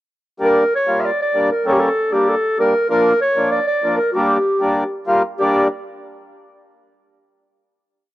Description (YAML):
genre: klezmer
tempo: 97 BPM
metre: 2/4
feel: straight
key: G minor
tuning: A4 = 440 Hz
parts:
  - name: mellow clarinet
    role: melody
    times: 0.4-5.7 s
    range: G4 to E5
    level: -17 LUFS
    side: equal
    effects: none
  - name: mellow accordion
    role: accompaniment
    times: 0.4-5.7 s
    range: F3 to F4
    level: -19 LUFS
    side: left 1 dB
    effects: none
room: light reverb, small room ambience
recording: dry, close 1970s-style studio recording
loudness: -15 LUFS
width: side -15 dB against mid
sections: 0.4-5.4 A section; 5.4-6.6 final chord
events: none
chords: 0.4 Gm; 2.9 Bb; 4.1 Gm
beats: | 0.41 1.03 | 1.65 2.27 | 2.89 3.51 | 4.13 4.75 | 5.37